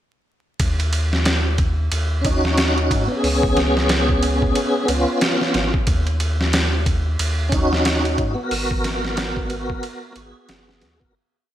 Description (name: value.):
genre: trip hop.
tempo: 91 BPM.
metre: 4/4.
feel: swing 60% on 16ths.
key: Eb minor.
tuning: A4 = 440 Hz.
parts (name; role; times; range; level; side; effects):
warm sub bass; bass; 0.6-11.1 s; Gb1 to Ab2; -22 LUFS; equal; none.
trip hop sampler-style drum kit; drums; 0.6-11.1 s; hi-hat, kick drum, ride cymbal, snare drum; -21 LUFS; equal; none.
tonewheel organ; accompaniment; 2.2-11.1 s; Cb4 to Bb4; -21 LUFS; equal; chorus vibrato, slow rotary speaker, tremolo, tape echo.
room: light reverb.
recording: vinyl crackle.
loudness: -17 LUFS.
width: side -12 dB against mid.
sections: 0.6-11.1 groove.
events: fade-out 7.6-11.1.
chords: 0.6 Ebm7; 3.2 Db7; 5.9 Ebm7; 8.5 Abm7.